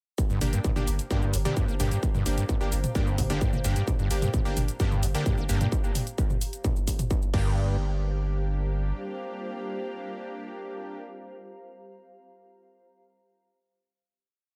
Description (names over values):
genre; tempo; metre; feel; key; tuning
driving peak-time techno; 130 BPM; 4/4; straight; G minor; A4 = 440 Hz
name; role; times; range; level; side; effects
electronic kick drum; drums; 0.2-7.4 s; none; -30 LUFS; equal; distortion
punchy analog drum machine; drums; 0.2-7.4 s; crash cymbal, hi-hat, shaker, toms; -36 LUFS; equal; sidechain pumping on hats, sidechain pumping on perc, sidechain pumping on toms, sidechain pumping on cymbals
granular cloud pad; texture; 1.0-11.5 s; G4 to Bb5; -43 LUFS; equal; built-in reverb, sidechain pumping
screaming distorted acid line; riff; 0.3-7.8 s; F2 to Bb3; -32 LUFS; equal; distortion, chorus, sidechain pumping, analog delay
saturated sub bass; bass; 0.3-8.9 s; G1; -32 LUFS; equal; overdrive, sidechain pumping, low-pass filter
supersaw stab; stabs; 0.4-11.0 s; Bb3 to G4; -37 LUFS; equal; sidechain pumping, analog delay
room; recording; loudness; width
little or no reverb; echo-heavy mix; -27 LUFS; mono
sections
0.2-7.6 drop; 7.6-11.3 final chord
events
drop 0.2-7.6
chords
0.2 Gm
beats
| 0.18 0.65 1.11 1.57 | 2.03 2.49 2.95 3.41 | 3.88 4.34 4.80 5.26 | 5.72 6.18 6.64 7.11 | 7.57 8.03 8.49 8.95 | 9.41 9.88 10.34 10.80